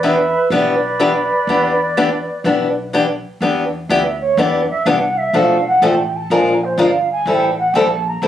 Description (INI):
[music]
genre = acoustic string swing (jazz manouche)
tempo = 124 BPM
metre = 4/4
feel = swing 66% on 8ths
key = E minor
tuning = A4 = 439 Hz
[part]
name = breathy clarinet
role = melody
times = 0.0-2.9 s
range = D5 to E5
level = -21 LUFS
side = right 1 dB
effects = none
[part]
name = bansuri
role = second line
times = 0.0-8.3 s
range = B4 to B5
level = -18 LUFS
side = right 2 dB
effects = none
[part]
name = picked old ladder-braced acoustic guitar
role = accompaniment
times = 0.0-8.3 s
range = B2 to A#4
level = -15 LUFS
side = left 2 dB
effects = none
[part]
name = upright bass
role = bass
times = 0.0-8.3 s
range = G1 to E2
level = -27 LUFS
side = right 1 dB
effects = none
[sound]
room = moderate studio reverb, RT60 0.6 s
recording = recorded on a phone in the room, club reverb, compression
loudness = -13 LUFS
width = side -11 dB against mid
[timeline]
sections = 0.0-3.4 A section; 3.4-8.3 B section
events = bansuri solo 3.4-8.3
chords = 0.0 Em7; 5.3 Bm7b5; 6.3 A#7; 7.3 Am7